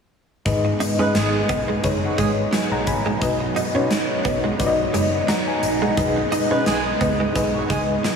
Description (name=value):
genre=1980s-style pop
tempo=87 BPM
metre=4/4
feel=swing 55% on 16ths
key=unclear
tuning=A4 = 440 Hz
part: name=FM electric piano with tremolo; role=accompaniment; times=0.5-8.2 s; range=G#2 to B5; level=-23 LUFS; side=left 3 dB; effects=shimmer reverb
part: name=string machine, cellos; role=sustained chords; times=0.5-8.2 s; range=F#3 to D#4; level=-26 LUFS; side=right 2 dB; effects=phaser, ensemble chorus, shimmer reverb
part: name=vintage muted picked electric bass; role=bass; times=0.5-8.0 s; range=F#1 to B2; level=-28 LUFS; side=equal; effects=none
part: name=huge arena drum kit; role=drums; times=0.5-8.2 s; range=hi-hat, kick drum, snare drum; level=-25 LUFS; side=equal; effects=none
part: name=direct-recorded clean electric guitar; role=riff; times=0.6-8.2 s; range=F#3 to D#4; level=-27 LUFS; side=right 4 dB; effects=ensemble chorus, analog delay, shimmer reverb
part: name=warm horn section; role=stabs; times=1.0-2.3, 6.5-7.8 s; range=F#3 to B4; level=-30 LUFS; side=right 4 dB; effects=shimmer reverb
room=wet cathedral reverb, RT60 5.6 s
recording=dreamy mix soaked in reverb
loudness=-18 LUFS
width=side -6 dB against mid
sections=0.5-8.2 A section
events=none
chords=0.5 G#m; 3.2 B; 6.0 G#m/B